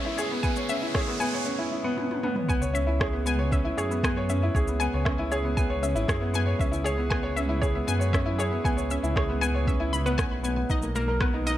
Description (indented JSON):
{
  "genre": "piano and strings electronica",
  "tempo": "117 BPM",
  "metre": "4/4",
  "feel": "straight",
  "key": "unclear",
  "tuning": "A4 = 441 Hz",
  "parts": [
    { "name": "dark grand piano", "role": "riff", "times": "0.0-11.6 s", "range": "A#3 to C#5", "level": "-28 LUFS", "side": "equal", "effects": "tape echo" },
    { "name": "dark detuned saw bass", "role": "bass", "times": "0.0-11.6 s", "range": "G#1 to F#2", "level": "-28 LUFS", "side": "equal", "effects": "sidechain pumping, high-pass filter" },
    { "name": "riser", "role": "sound effects", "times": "0.0-1.5 s", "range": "none", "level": "-34 LUFS", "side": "right 1 dB", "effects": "none" },
    { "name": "analog pluck", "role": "arpeggios", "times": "0.2-11.5 s", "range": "A#4 to B5", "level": "-33 LUFS", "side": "left 2 dB", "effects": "chorus, sidechain pumping, tape echo" },
    { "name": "organic electronic drum kit", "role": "drums", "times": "0.2-11.6 s", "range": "rim click, shaker, toms", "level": "-34 LUFS", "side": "equal", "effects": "overdrive" },
    { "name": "electronic kick drum", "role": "drums", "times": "0.4-11.3 s", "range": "none", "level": "-28 LUFS", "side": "equal", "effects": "overdrive" }
  ],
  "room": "light reverb",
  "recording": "none",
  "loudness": "-24 LUFS",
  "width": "side -13 dB against mid",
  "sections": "0.0-2.5 A section; 2.5-11.6 B section",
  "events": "build-up 0.0-2.5; riser 0.0-1.5; filter sweep on synth arpeggio sound 0.0-2.5; drum fill 2.0-2.5; drop 2.5-11.6",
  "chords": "0.0 C#m7; 10.7 Bmaj7"
}